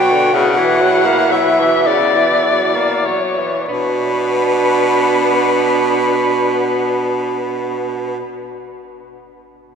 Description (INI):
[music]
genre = classical, lyrical piece for single-reed quartet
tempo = 31-45 BPM (dotted quarters)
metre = 6/8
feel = rubato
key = B minor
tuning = A4 = 440 Hz
[part]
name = mellow soprano saxophone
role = melody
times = 0.0-8.2 s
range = B4 to G5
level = -17 LUFS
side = left 4 dB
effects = none
[part]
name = warm alto saxophone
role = second line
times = 0.0-8.2 s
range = D4 to F#4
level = -21 LUFS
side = right 4 dB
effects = none
[part]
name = warm tenor saxophone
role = accompaniment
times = 0.0-8.2 s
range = C#3 to B3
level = -20 LUFS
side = left 1 dB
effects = none
[part]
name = bright baritone saxophone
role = bass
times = 0.0-8.2 s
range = B2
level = -18 LUFS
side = right 3 dB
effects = none
[sound]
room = wet cathedral reverb, RT60 4.9 s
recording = recorded in a church or concert hall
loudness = -13 LUFS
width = side -6 dB against mid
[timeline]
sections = 0.0-3.7 A section; 3.7-7.4 B section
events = slowing down 0.0-3.7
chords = 0.3 F#7/B; 3.7 Bm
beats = | 0.34 1.86 | 3.69 5.53